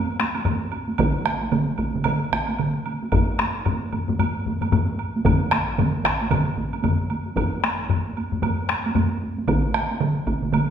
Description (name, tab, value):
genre	japanese traditional, taiko drum ensemble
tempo	113 BPM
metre	4/4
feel	swing 60% on 16ths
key	none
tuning	none
part	taiko ensemble	percussion	0.2-10.7 s	none	-27 LUFS	right 3 dB	none
part	taiko ensemble	percussion	0.2-9.1 s	none	-23 LUFS	left 3 dB	none
part	woodblock	percussion	0.3-10.7 s	none	-32 LUFS	right 5 dB	none
part	solo taiko drums	percussion	1.0-10.7 s	none	-24 LUFS	right 3 dB	none
part	taiko ensemble	percussion	1.0-10.4 s	none	-27 LUFS	equal	none
room	wet recital hall reverb, RT60 1.4 s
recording	recorded in a church or concert hall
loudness	-20 LUFS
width	side -8 dB against mid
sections	0.0-10.7 A section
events	none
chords	none